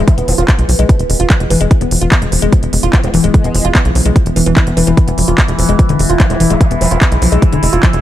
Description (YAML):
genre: psychedelic trance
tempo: 147 BPM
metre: 4/4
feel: straight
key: E major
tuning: A4 = 440 Hz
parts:
  - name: vowel-sweep wobble bass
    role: second line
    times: 0.0-0.4, 2.9-7.0 s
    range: G#3 to E4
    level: -25 LUFS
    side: left 3 dB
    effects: wide subtle chorus, sidechain pumping, high-pass filter, tape echo
  - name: overtone-sweeping drone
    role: sustained chords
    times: 0.0-8.0 s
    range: E3 to E4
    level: -20 LUFS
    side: left 1 dB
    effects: chorus, built-in reverb, sidechain pumping
  - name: woody wave-folded pluck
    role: riff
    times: 0.0-8.0 s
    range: D3 to F4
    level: -16 LUFS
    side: moving between left 5 dB and right 4 dB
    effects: chorus, auto-pan, sidechain pumping, digital delay
  - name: tight sequencer bass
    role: bass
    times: 0.0-8.0 s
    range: D1 to B1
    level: -14 LUFS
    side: equal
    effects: none
  - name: electronic kick drum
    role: drums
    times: 0.1-7.9 s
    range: none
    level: -10 LUFS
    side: equal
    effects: none
  - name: techno drum kit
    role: drums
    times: 0.1-8.0 s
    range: handclaps, hi-hat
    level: -18 LUFS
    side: equal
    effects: none
room: little or no reverb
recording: none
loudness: -9 LUFS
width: side -12 dB against mid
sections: 0.0-8.0 A section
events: none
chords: 0.0 E5